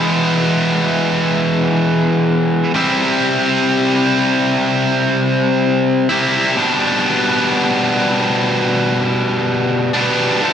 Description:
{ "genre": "rock", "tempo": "63 BPM", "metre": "4/4", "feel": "straight", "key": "unclear", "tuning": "A4 = 441 Hz", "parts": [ { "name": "tight distorted guitar", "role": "solo", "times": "0.0-10.5 s", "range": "B2 to E4", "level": "-13 LUFS", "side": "equal", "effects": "distortion" } ], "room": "wet concert hall reverb, RT60 2.0 s", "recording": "big arena sound", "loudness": "-13 LUFS", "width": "side -8 dB against mid", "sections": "0.0-2.8 A section; 2.8-10.5 B section", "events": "none", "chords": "0.0 E; 2.8 C; 6.6 G/B", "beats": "0.84 1.80 | 2.76 3.71 4.67 5.63 | 6.59 7.54 8.50 9.46 | 10.42" }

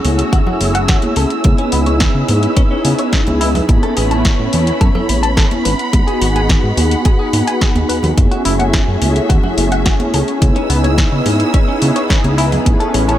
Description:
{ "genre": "nu-disco, nu disco", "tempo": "107 BPM", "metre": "4/4", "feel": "straight", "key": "F# dorian", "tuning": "A4 = 440 Hz", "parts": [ { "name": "warm analog pad", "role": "accompaniment", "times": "0.0-13.2 s", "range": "A3 to G#4", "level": "-18 LUFS", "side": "equal", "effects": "ensemble chorus, sidechain pumping, analog delay" }, { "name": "warm symphonic string section", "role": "sustained chords", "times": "0.0-13.2 s", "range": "A3 to E6", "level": "-23 LUFS", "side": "equal", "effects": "sidechain pumping" }, { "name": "fat analog bass", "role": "bass", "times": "0.0-13.2 s", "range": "F#1 to C#3", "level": "-16 LUFS", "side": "equal", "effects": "none" }, { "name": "house drum kit", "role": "drums", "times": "0.0-13.2 s", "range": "hi-hat, snare drum", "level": "-21 LUFS", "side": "left 1 dB", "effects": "none" }, { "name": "congas", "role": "percussion", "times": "0.1-13.2 s", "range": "none", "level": "-24 LUFS", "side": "equal", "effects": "none" }, { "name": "direct-recorded clean electric guitar", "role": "riff", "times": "0.3-13.1 s", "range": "B3 to A5", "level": "-22 LUFS", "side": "left 2 dB", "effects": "lush chorus" }, { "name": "electronic kick drum", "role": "drums", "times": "0.3-12.8 s", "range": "none", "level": "-14 LUFS", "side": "equal", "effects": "none" } ], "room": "little or no reverb", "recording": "none", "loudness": "-11 LUFS", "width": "side -12 dB against mid", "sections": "0.0-13.2 A section", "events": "filter sweep on analog synth pad 0.0-13.2", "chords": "0.0 F#m7; 1.4 C#m7; 3.7 Amaj9; 5.7 G#m7; 8.2 F#m7; 10.4 C#m7; 12.7 Amaj9", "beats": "0.33 0.89 | 1.45 2.01 2.57 3.13 | 3.69 4.25 4.81 5.37 | 5.93 6.50 7.06 7.62 | 8.18 8.74 9.30 9.86 | 10.42 10.98 11.54 12.10 | 12.66" }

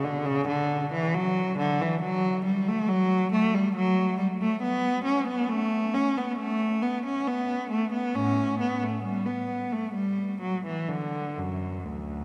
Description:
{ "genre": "classical, baroque-style suite movement for unaccompanied cello", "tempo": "62-70 BPM", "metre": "3/4", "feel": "rubato", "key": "D major", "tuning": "A4 = 440 Hz", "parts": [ { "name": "rich cello", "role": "solo", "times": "0.0-12.2 s", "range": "D2 to C#4", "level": "-27 LUFS", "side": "equal", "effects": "none" } ], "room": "wet cathedral reverb, RT60 4.6 s", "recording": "none", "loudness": "-27 LUFS", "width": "mono", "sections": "0.0-12.2 A section", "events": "none", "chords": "none", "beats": "| 0.25 1.14 2.02 | 2.89 3.76 4.62 | 5.48 6.37 7.26 | 8.15 9.04 9.95 | 10.90 11.86" }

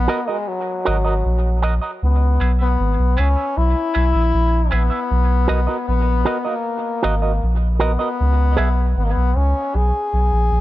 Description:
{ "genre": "dub reggae", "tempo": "78 BPM", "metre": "4/4", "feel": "straight", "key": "C# dorian", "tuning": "A4 = 440 Hz", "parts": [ { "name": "bright trombone", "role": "melody", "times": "0.0-10.6 s", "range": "F#3 to G#4", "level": "-22 LUFS", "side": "left 3 dB", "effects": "dub echo" }, { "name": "soft dub sub bass", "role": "bass", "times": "0.0-10.6 s", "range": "G#1 to C#2", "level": "-17 LUFS", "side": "equal", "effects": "none" }, { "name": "electric guitar with an envelope filter", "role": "accompaniment", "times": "0.1-8.7 s", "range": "F#4 to E5", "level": "-25 LUFS", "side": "right 5 dB", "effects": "high-pass filter, dub echo" } ], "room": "small room reverb", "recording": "none", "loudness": "-16 LUFS", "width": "side -16 dB against mid", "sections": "0.0-10.6 A section", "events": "filter sweep on clean electric guitar 0.0-5.1", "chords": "0.0 Bmaj7 (rootless); 2.0 C#m7; 5.1 Bmaj7; 8.2 C#7(no3)", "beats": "0.47 1.24 | 2.01 2.78 3.55 4.33 | 5.10 5.87 6.64 7.41 | 8.19 8.96 9.73 10.50" }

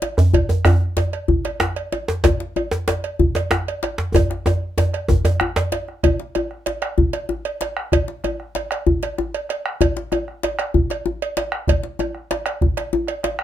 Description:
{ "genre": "west african traditional, West African drum ensemble", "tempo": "127 BPM (dotted quarters)", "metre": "12/8", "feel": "straight", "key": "none", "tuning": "none", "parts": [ { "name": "cowbell", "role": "percussion", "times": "0.0-13.4 s", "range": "none", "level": "-26 LUFS", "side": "right 6 dB", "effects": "none" }, { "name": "djembe", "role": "percussion", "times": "0.0-13.4 s", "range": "none", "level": "-22 LUFS", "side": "left 4 dB", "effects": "none" }, { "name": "bombo", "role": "percussion", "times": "0.2-13.4 s", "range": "none", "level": "-21 LUFS", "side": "right 1 dB", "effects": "none" }, { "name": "djembe", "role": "percussion", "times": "0.2-5.7 s", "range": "none", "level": "-18 LUFS", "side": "right 1 dB", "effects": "none" } ], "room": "light reverb", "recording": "none", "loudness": "-18 LUFS", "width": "side -11 dB against mid", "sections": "0.0-6.0 A section; 6.0-13.4 B section", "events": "drum fill 4.1-6.0", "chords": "none", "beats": "| 0.34 0.81 1.29 1.77 | 2.24 2.72 3.19 3.67 | 4.14 4.62 5.09 5.57 | 6.04 6.51 6.98 7.46 | 7.93 8.40 8.87 9.34 | 9.81 10.28 10.74 11.21 | 11.68 12.15 12.61 13.08" }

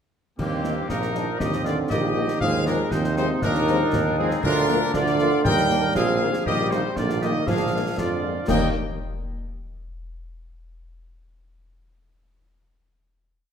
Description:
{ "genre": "military-style march for wind band", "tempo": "119 BPM", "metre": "2/4", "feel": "straight", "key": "Eb major", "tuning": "A4 = 439 Hz", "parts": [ { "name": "bright trumpet section", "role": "melody", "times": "0.4-8.7 s", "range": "G4 to G5", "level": "-28 LUFS", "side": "left 1 dB", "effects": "none" }, { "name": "warm euphonium", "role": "second line", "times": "0.4-8.7 s", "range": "G2 to G3", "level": "-28 LUFS", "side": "right 4 dB", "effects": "none" }, { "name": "warm woodwind section", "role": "second line", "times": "0.4-8.7 s", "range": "Bb3 to Eb5", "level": "-30 LUFS", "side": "left 2 dB", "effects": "none" }, { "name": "clear trombone section", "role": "sustained chords", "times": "0.4-8.7 s", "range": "Eb3 to F4", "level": "-30 LUFS", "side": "right 1 dB", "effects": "none" }, { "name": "clear tuba", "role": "bass", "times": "0.4-8.7 s", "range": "Bb1 to F2", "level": "-26 LUFS", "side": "right 2 dB", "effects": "none" }, { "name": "clash cymbals, concert bass drum and concert snare drum", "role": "drums", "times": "0.4-8.8 s", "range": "none", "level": "-31 LUFS", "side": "left 2 dB", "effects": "none" }, { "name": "mellow French horn section", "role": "accompaniment", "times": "0.6-8.7 s", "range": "D3 to Eb4", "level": "-31 LUFS", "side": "left 5 dB", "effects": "none" } ], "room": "wet recital hall reverb, RT60 1.6 s", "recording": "minimal, uncompressed stereo recording", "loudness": "-20 LUFS", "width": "side -7 dB against mid", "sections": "0.4-8.5 A section; 8.5-9.5 final chord", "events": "none", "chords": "0.4 Eb; 2.4 Fm7/Eb; 4.4 Bb/D; 5.4 Eb; 6.5 Eb/Bb; 7.5 Bb7; 8.5 Eb", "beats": "| 0.39 0.90 | 1.40 1.91 | 2.41 2.92 | 3.42 3.93 | 4.43 4.94 | 5.45 5.95 | 6.46 6.96 | 7.47 7.98 | 8.48" }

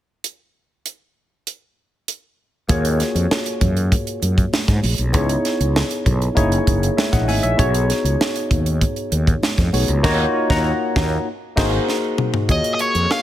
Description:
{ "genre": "polished 1980s jazz-funk pop", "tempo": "98 BPM", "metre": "4/4", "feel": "straight", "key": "Eb minor", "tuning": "A4 = 441 Hz", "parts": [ { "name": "tight funk drum kit", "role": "drums", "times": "0.2-13.2 s", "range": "crash cymbal, hi-hat, kick drum, snare drum, toms", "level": "-20 LUFS", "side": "right 1 dB", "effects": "none" }, { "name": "barky tine electric piano", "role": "accompaniment", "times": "2.7-13.2 s", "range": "Bb3 to Bb5", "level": "-21 LUFS", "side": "left 1 dB", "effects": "overdrive, analog chorus" }, { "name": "fretless electric bass", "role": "bass", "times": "2.7-13.1 s", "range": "Gb1 to Ab2", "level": "-20 LUFS", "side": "equal", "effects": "none" }, { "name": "congas", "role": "percussion", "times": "2.7-9.9 s", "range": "none", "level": "-29 LUFS", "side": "right 2 dB", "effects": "none" }, { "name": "nasal lead guitar with a parked wah", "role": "melody", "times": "12.5-13.2 s", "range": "Db5 to F5", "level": "-18 LUFS", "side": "equal", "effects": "overdrive" } ], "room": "light reverb, small room reverb", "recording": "none", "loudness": "-16 LUFS", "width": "side -12 dB against mid", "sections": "0.2-2.7 A section; 2.7-12.5 B section", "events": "band accent 10.0-12.5; drum fill 11.9-12.5", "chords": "0.2 N.C.; 2.7 Ebm11; 5.1 Dbm9; 6.4 Gb13; 7.6 B69; 10.0 Ebm9; 11.3 Ab9; 12.5 Ebm11", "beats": "| 0.24 0.86 1.47 2.08 | 2.69 3.31 3.92 4.53 | 5.14 5.75 6.37 6.98 | 7.59 8.20 8.82 9.43 | 10.04 10.65 11.27 11.88 | 12.49 13.10" }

